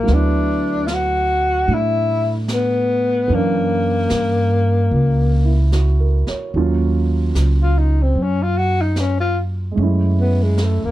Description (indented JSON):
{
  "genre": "jazz ballad",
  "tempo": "74 BPM",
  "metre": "4/4",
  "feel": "swing 69% on 8ths",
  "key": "Eb minor from 6.5 s",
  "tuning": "A4 = 440 Hz",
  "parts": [
    { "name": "breathy tenor saxophone", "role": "melody", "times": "0.0-10.9 s", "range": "Ab3 to F#4", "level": "-19 LUFS", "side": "left 2 dB", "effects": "none" },
    { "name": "warm grand piano", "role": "accompaniment", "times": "0.0-10.9 s", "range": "E3 to C#5", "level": "-24 LUFS", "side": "right 5 dB", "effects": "none" },
    { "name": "upright bass", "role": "bass", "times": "0.0-10.9 s", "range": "C#2 to A2", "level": "-17 LUFS", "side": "equal", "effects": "none" },
    { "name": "jazz brush drum kit", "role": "drums", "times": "0.1-10.9 s", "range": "brushed snare drum, hi-hat, snare drum", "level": "-32 LUFS", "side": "right 2 dB", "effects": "none" }
  ],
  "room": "little or no reverb",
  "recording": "dark, warm production",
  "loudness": "-15 LUFS",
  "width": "side -14 dB against mid",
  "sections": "0.0-6.5 A section; 6.5-10.9 B section",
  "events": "tenor saxophone solo 6.5-10.9",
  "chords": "0.1 D69; 3.3 F#7b13; 6.5 Ebm9; 9.8 Gbm9"
}